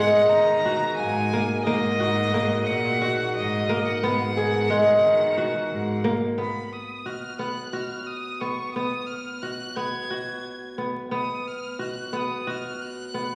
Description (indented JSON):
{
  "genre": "contemporary instrumental, chamber music in an uneven meter",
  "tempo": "178 BPM (eighths)",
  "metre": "7/8",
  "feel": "straight",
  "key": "G# dorian",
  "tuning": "A4 = 443 Hz",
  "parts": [
    { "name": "clear violin", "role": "melody", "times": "0.0-13.3 s", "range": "D#5 to G#6", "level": "-32 LUFS", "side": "equal", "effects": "none" },
    { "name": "dark woodwind section", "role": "sustained chords", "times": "0.0-6.4 s", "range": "G#3 to A#4", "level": "-37 LUFS", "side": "equal", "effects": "none" },
    { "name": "kora", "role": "arpeggios", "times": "0.0-13.3 s", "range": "G#3 to G#4", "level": "-27 LUFS", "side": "equal", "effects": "none" },
    { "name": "rich cello", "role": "bass", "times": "0.0-6.2 s", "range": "G#2 to D#3", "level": "-32 LUFS", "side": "equal", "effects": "none" },
    { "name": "worn celesta", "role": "texture", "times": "1.0-2.0 s", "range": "E#5", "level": "-44 LUFS", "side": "equal", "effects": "none" }
  ],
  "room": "wet recital hall reverb, RT60 1.6 s",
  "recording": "vinyl crackle, faint mains hum",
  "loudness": "-25 LUFS",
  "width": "mono",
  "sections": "0.0-6.4 A section; 6.4-13.3 B section",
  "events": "none",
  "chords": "0.0 G#m9; 1.7 D#madd9/G#; 4.0 G#m9; 6.4 G#m7 (rootless)"
}